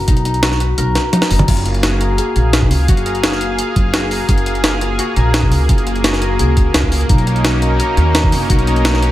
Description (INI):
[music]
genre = liquid drum and bass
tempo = 171 BPM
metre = 4/4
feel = straight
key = F# major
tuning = A4 = 440 Hz
[part]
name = Celtic harp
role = arpeggios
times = 0.0-9.1 s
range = D#4 to B4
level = -21 LUFS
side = left 4 dB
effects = digital delay
[part]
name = upright bass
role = bass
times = 0.0-9.1 s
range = F#1 to D#2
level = -16 LUFS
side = equal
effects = none
[part]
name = electronic kick drum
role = drums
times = 0.1-8.6 s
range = none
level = -15 LUFS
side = equal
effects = none
[part]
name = jungle sampler-style drum kit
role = drums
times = 0.1-9.1 s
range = crash cymbal, hi-hat, snare drum, toms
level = -18 LUFS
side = equal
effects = none
[part]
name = lush unison pad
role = sustained chords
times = 1.5-9.1 s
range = A#3 to E#5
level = -21 LUFS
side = right 1 dB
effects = chorus, sidechain pumping
[sound]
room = light reverb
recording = none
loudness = -12 LUFS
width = side -14 dB against mid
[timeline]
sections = 0.0-1.5 A section; 1.5-9.1 A section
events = drop 0.0-1.5, 1.5-9.1; kick drops out 0.8-1.5; drum fill 1.0-1.5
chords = 0.0 Bmaj7; 1.5 F#maj9; 7.1 Bmaj7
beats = | 0.08 0.43 0.78 1.13 | 1.48 1.83 2.18 2.53 | 2.88 3.24 3.59 3.94 | 4.29 4.64 4.99 5.34 | 5.69 6.04 6.39 6.75 | 7.09 7.45 7.80 8.15 | 8.50 8.85